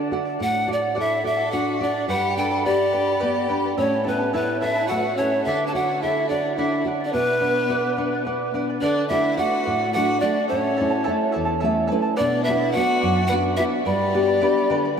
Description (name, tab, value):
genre	andean folk, Andean ensemble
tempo	71 BPM (dotted quarters)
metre	6/8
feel	straight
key	unclear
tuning	A4 = 437 Hz
part	breathy bright pan flute	melody	0.0-15.0 s	B4 to A5	-23 LUFS	equal	none
part	charango	accompaniment	0.0-15.0 s	E4 to B5	-29 LUFS	right 2 dB	none
part	nylon-string guitar	accompaniment	0.0-15.0 s	E2 to E5	-24 LUFS	equal	none
part	clear violin	second line	1.0-15.0 s	B3 to A4	-28 LUFS	left 1 dB	none
room	wet huge ambient reverb, RT60 8.0 s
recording	in a vast, echoing space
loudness	-19 LUFS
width	side -7 dB against mid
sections	0.0-8.8 A section; 8.8-15.0 B section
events	nylon-string guitar fill 11.3-12.2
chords	0.0 D; 2.1 G; 3.8 A; 5.5 D; 7.1 Bm; 8.8 D; 10.5 A; 12.2 Bm; 13.9 G